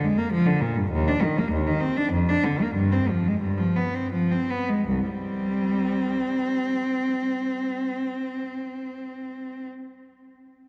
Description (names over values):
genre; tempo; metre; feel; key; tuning
classical, baroque-style suite movement for unaccompanied cello; 76-104 BPM; 3/4; rubato; C minor; A4 = 440 Hz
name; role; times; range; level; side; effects
rich cello; solo; 0.0-9.7 s; C2 to D4; -25 LUFS; equal; none
room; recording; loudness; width
wet cathedral reverb, RT60 4.7 s; none; -25 LUFS; mono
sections
0.0-4.9 A section; 4.9-9.5 B section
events
slowing down 0.0-4.9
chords
0.0 Ddim; 0.9 Cm/Eb; 2.1 Bb/F; 2.8 G7; 4.9 C5